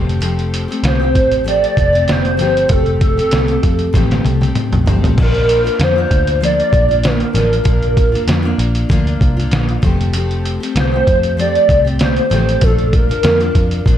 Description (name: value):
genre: indie pop, bedroom pop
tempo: 97 BPM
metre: 4/4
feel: swing 55% on 16ths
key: Bb major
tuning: A4 = 440 Hz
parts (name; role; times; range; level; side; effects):
- picked steel-string acoustic guitar; accompaniment; 0.0-14.0 s; F3 to G4; -22 LUFS; left 4 dB; wide subtle chorus, vibrato effect
- vintage muted picked electric bass; bass; 0.0-14.0 s; F1 to F2; -17 LUFS; equal; none
- trip hop sampler-style drum kit; drums; 0.1-14.0 s; crash cymbal, hi-hat, kick drum, snare drum, toms; -16 LUFS; equal; none
- hollow clarinet-like synth lead; melody; 0.9-14.0 s; A4 to D5; -15 LUFS; right 1 dB; ensemble chorus, slapback echo
room: light reverb, digital ambience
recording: dark, warm production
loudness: -12 LUFS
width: side -10 dB against mid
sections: 0.0-14.0 A section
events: drum fill 3.9-5.2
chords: 0.0 Fadd9; 5.2 Bb; 9.8 Fadd9; 12.6 Bbmaj7